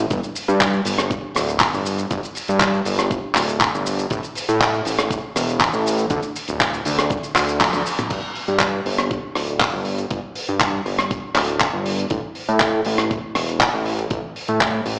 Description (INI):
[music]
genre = nu-disco, nu disco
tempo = 120 BPM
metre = 4/4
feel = straight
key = unclear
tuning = A4 = 440 Hz
[part]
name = fat analog bass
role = bass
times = 0.0-15.0 s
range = D1 to A2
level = -21 LUFS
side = equal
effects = none
[part]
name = electronic kick drum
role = drums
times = 0.1-14.7 s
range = none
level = -26 LUFS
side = equal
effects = none
[part]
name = tight funk drum kit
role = drums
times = 0.1-15.0 s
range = crash cymbal, handclaps, hi-hat, rim click, shaker, toms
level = -21 LUFS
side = equal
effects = none
[sound]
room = moderate plate reverb, RT60 2.8 s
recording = played on a big sound system in a bare room, large studio reverb, small speaker sound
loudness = -18 LUFS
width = side -30 dB against mid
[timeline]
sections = 0.0-8.1 A section; 8.1-15.0 B section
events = drop 0.0-8.1; drum fill 7.6-8.1; band accent 7.6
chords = none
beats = | 0.11 0.61 1.11 1.61 | 2.11 2.61 3.11 3.61 | 4.11 4.61 5.11 5.61 | 6.11 6.61 7.11 7.61 | 8.11 8.61 9.11 9.61 | 10.11 10.61 11.11 11.61 | 12.11 12.61 13.11 13.61 | 14.11 14.61